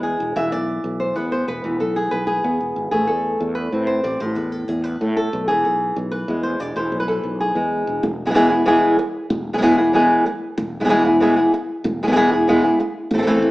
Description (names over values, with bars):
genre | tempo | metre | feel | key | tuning
flamenco | 188 BPM | 4/4 | straight | E major | A4 = 440 Hz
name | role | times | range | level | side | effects
flamenco guitar | melody | 0.0-13.5 s | A2 to E5 | -17 LUFS | equal | none
fretless electric bass | bass | 0.0-13.5 s | E1 to A2 | -26 LUFS | equal | lush chorus
room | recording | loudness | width
wet large studio reverb, RT60 1.3 s | small speaker sound | -17 LUFS | side -18 dB against mid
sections
0.0-8.0 A section; 8.0-13.5 B section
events
none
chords
0.0 E; 2.9 Am; 5.5 E